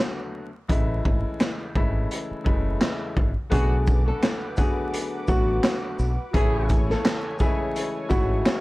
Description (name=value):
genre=hip hop, boom-bap hip-hop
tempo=85 BPM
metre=4/4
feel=swing 57% on 16ths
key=B dorian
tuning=A4 = 441 Hz
part: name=clear upright piano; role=accompaniment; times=0.0-8.6 s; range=C#3 to F#4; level=-30 LUFS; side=left 2 dB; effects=high-pass filter, low-pass filter
part: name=deep dub fingered electric bass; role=bass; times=0.7-8.4 s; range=F#1 to B1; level=-25 LUFS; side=equal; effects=none
part: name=raw garage drum kit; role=drums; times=0.7-8.6 s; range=handclaps, hi-hat, kick drum, shaker, snare drum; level=-24 LUFS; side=equal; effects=vintage 12-bit sampler grit
part: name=nylon-string guitar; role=melody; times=3.5-8.6 s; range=F#4 to A4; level=-28 LUFS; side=equal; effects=high-pass filter, low-pass filter, analog delay
part: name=warm analog pad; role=sustained chords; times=3.5-8.6 s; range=B4 to D6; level=-38 LUFS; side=equal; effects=chorus, tremolo, high-pass filter, low-pass filter
part: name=dark horn section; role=stabs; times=3.5-6.8 s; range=B3 to G#4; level=-37 LUFS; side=right 1 dB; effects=high-pass filter, low-pass filter, analog delay
room=little or no reverb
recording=vinyl crackle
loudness=-21 LUFS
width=side -20 dB against mid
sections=0.0-3.5 A section; 3.5-8.6 B section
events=none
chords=0.0 Bm7; 0.7 Amaj7; 3.5 Bm7; 6.3 Amaj7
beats=| 0.69 1.40 2.10 2.81 | 3.52 4.22 4.93 5.63 | 6.34 7.05 7.75 8.46